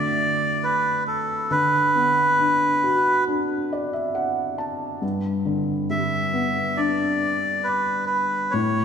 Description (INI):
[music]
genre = children's music, lullaby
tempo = 68 BPM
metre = 4/4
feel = rubato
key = unclear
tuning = A4 = 440 Hz
[part]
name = melodica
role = melody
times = 0.0-8.8 s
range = A4 to E5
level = -21 LUFS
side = equal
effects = none
[part]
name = felt-muted upright piano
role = accompaniment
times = 0.0-8.8 s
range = G2 to A5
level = -24 LUFS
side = equal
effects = none
[sound]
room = wet concert hall reverb, RT60 2.3 s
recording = recorded in a church or concert hall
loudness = -20 LUFS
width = side -7 dB against mid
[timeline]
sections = 0.0-8.8 A section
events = felt piano fill 3.3-5.0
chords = 0.0 D; 1.5 Bm/D; 5.0 G